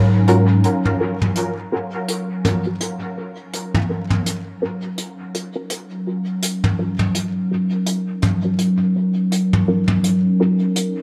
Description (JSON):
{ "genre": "ambient dub", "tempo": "83 BPM", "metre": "4/4", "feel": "swing 58% on 16ths", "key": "Eb minor", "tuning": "A4 = 440 Hz", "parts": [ { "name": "warbly tape-like pad", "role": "sustained chords", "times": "0.0-11.0 s", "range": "Gb3 to Db5", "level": "-23 LUFS", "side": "equal", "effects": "chorus, built-in reverb, vintage 12-bit sampler grit" }, { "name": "upright bass", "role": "bass", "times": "0.0-0.6 s", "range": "Ab2", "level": "-17 LUFS", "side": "equal", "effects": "none" }, { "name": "filtered dub chord stab", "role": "stabs", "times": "0.3-10.7 s", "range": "Db4 to Bb4", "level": "-27 LUFS", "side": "equal", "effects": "phaser, ensemble chorus, dub echo" }, { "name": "soft brush drum kit", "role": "drums", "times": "0.3-10.9 s", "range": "hi-hat, toms", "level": "-24 LUFS", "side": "equal", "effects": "dub echo" } ], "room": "light reverb, studio reverb", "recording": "echo-heavy mix", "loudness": "-20 LUFS", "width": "mono", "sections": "0.6-11.0 A section", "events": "band accent 0.0; filter sweep on synth stab 0.6-11.0", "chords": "0.0 Ebm7", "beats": "| 0.64 1.37 2.09 2.81 | 3.54 4.26 4.98 5.70 | 6.43 7.15 7.87 8.60 | 9.32 10.04 10.76" }